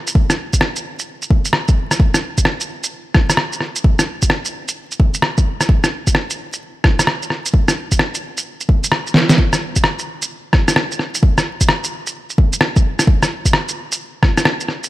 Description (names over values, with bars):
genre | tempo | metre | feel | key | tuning
future garage | 130 BPM | 4/4 | swing 66% on 16ths | none | none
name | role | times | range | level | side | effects
electronic shaker, rim click and snare drum | drums | 0.1-14.9 s | none | -16 LUFS | equal | none
electronic kick drum | drums | 0.2-14.3 s | none | -14 LUFS | equal | overdrive
room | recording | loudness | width
light reverb | vinyl crackle | -14 LUFS | side -16 dB against mid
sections
0.0-14.9 A section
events
kick drops out 8.9-9.4; drum fill 9.2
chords
none